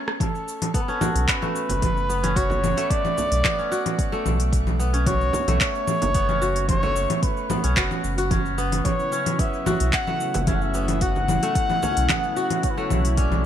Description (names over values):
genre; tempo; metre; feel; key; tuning
organic downtempo; 111 BPM; 4/4; straight; B minor; A4 = 440 Hz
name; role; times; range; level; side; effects
kora; arpeggios; 0.0-13.5 s; A3 to F#4; -27 LUFS; equal; ping-pong delay, shimmer reverb
organic electronic drum kit; drums; 0.1-13.4 s; congas, handclaps, hi-hat, rim click, shaker; -26 LUFS; equal; none
trumpet with cup mute; melody; 0.2-13.5 s; A4 to F#5; -26 LUFS; left 1 dB; digital delay, shimmer reverb
electronic kick drum; drums; 0.2-13.3 s; none; -25 LUFS; equal; none
frame drum; percussion; 1.0-11.9 s; none; -32 LUFS; right 4 dB; none
warm sub bass; bass; 1.2-13.5 s; F#1 to B1; -24 LUFS; equal; none
warm analog pad; sustained chords; 8.8-13.5 s; C#3 to E4; -32 LUFS; left 1 dB; chorus, sidechain pumping, shimmer reverb
room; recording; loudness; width
moderate plate reverb, RT60 1.3 s, digital ambience; bright 1980s-style digital production; -20 LUFS; side -10 dB against mid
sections
0.2-13.5 A section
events
break 0.0; drum fill 0.0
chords
0.2 B7(no3); 8.9 F#m7